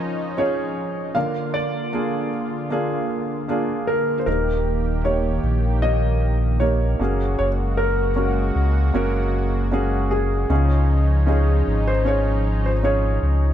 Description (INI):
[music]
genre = pop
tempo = 77 BPM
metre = 4/4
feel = straight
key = Db major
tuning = A4 = 440 Hz
[part]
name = warm concert grand piano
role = melody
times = 0.0-13.5 s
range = Ab4 to F5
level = -26 LUFS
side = equal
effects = none
[part]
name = warm concert grand piano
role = accompaniment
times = 0.0-13.5 s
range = Db3 to Db5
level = -25 LUFS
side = right 1 dB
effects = none
[part]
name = lush unison pad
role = sustained chords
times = 0.0-13.5 s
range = D3 to G4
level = -28 LUFS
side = equal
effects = chorus
[part]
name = sub bass with octave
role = bass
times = 4.3-13.5 s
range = Eb1 to Db2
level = -20 LUFS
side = equal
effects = none
[sound]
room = light reverb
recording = dark, warm production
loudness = -19 LUFS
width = side -10 dB against mid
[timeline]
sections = 0.0-13.5 A section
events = none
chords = 0.0 Dbadd9; 1.2 Bb/D; 4.3 Eb; 7.0 Gbadd9; 10.5 Dbadd9